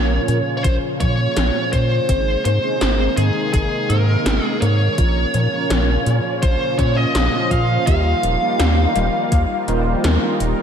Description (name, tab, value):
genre	synthwave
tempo	83 BPM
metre	4/4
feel	straight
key	unclear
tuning	A4 = 442 Hz
part	biting lead guitar	melody	0.0-10.0 s	Ab4 to F5	-22 LUFS	equal	overdrive, ping-pong delay, shimmer reverb
part	lush unison pad	sustained chords	0.0-10.6 s	Bb2 to F4	-25 LUFS	equal	chorus, vintage 12-bit sampler grit, sidechain pumping, shimmer reverb
part	analog pluck	arpeggios	0.0-10.3 s	Eb3 to F4	-31 LUFS	left 4 dB	none
part	mellow synth brass	stabs	0.0-10.6 s	F3 to Db5	-26 LUFS	right 4 dB	chorus, cassette tape, tape echo, shimmer reverb
part	round analog bass	bass	0.0-10.5 s	Eb1 to Bb2	-18 LUFS	equal	tube saturation, sidechain pumping
part	80s electronic pad drums	drums	0.3-10.5 s	hi-hat, snare drum	-24 LUFS	equal	overdrive, gated reverb
part	electronic kick drum	drums	0.6-9.5 s	none	-20 LUFS	equal	overdrive
room	moderate scoring stage reverb, RT60 2.1 s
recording	none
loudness	-15 LUFS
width	side -8 dB against mid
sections	0.0-10.6 A section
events	filter sweep on analog polysynth 0.0-10.6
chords	0.0 Bbm; 2.1 Abadd9; 5.0 Bbm; 7.9 Ebadd9